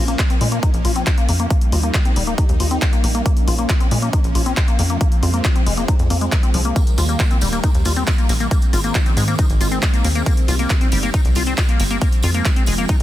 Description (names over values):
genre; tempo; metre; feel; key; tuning
uplifting trance; 137 BPM; 4/4; straight; Bb dorian; A4 = 439 Hz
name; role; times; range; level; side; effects
supersaw pad; sustained chords; 0.0-13.0 s; Eb3 to Eb4; -26 LUFS; right 1 dB; sidechain pumping
liquid acid bass; arpeggios; 0.0-13.0 s; F3 to F4; -24 LUFS; left 5 dB; chorus, cassette tape, sidechain pumping, dub echo
tight sequencer bass; bass; 0.0-13.0 s; Eb1 to Bb2; -20 LUFS; equal; tube saturation, sidechain pumping
punchy analog drum machine; drums; 0.1-13.0 s; handclaps, hi-hat; -25 LUFS; equal; none
electronic kick drum; drums; 0.2-13.0 s; none; -16 LUFS; equal; overdrive
tambourine; percussion; 6.8-13.0 s; none; -31 LUFS; right 7 dB; none
room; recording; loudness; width
digital ambience; dense, heavily limited modern master; -15 LUFS; side -14 dB against mid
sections
0.0-13.0 A section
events
filter sweep on acid bass 0.0-13.0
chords
0.0 Bbm; 1.5 Eb; 3.3 Bbm; 5.0 Fm; 6.8 Eb; 8.5 Ab; 10.3 Cm; 12.0 Fm